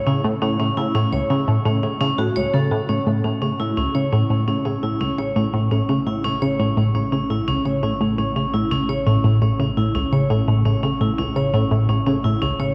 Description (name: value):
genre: ambient, sequencer-driven space music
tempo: 85 BPM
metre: 4/4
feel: straight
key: unclear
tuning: A4 = 438 Hz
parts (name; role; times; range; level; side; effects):
- vibraphone with hard mallets; arpeggios; 0.0-12.7 s; C#4 to C#5; -26 LUFS; equal; tape echo
- tight sequenced synth; riff; 0.1-12.7 s; C#2 to C#3; -22 LUFS; equal; chorus, tape echo
- round analog bass; bass; 2.9-12.7 s; A1; -40 LUFS; equal; none
room: wet cathedral reverb, RT60 6.9 s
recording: in a vast, echoing space, nothing above 10.5 kHz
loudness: -20 LUFS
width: mono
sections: 0.0-2.9 A section; 2.9-12.7 B section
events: fade-in on analog synth bass 2.9-12.7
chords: 0.0 A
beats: | 0.07 0.77 1.48 2.19 | 2.89 3.60 4.30 5.01 | 5.71 6.42 7.13 7.83 | 8.54 9.24 9.95 10.65 | 11.36 12.07